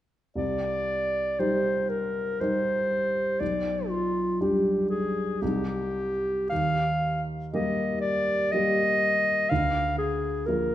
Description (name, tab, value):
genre	classical, romantic duo for clarinet and grand piano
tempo	59 BPM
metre	3/4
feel	uneven beats, rubato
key	C minor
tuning	A4 = 440 Hz
part	warm clarinet	melody	0.4-10.7 s	F4 to F5	-26 LUFS	equal	none
part	warm grand piano	accompaniment	0.4-10.7 s	B1 to Bb4	-28 LUFS	equal	none
room	wet recital hall reverb, RT60 1.6 s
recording	minimal, uncompressed stereo recording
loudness	-24 LUFS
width	side -12 dB against mid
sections	0.4-10.7 A section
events	none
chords	0.4 Cm; 3.4 G/B; 5.4 Cm; 6.5 Eb; 9.5 Bb/D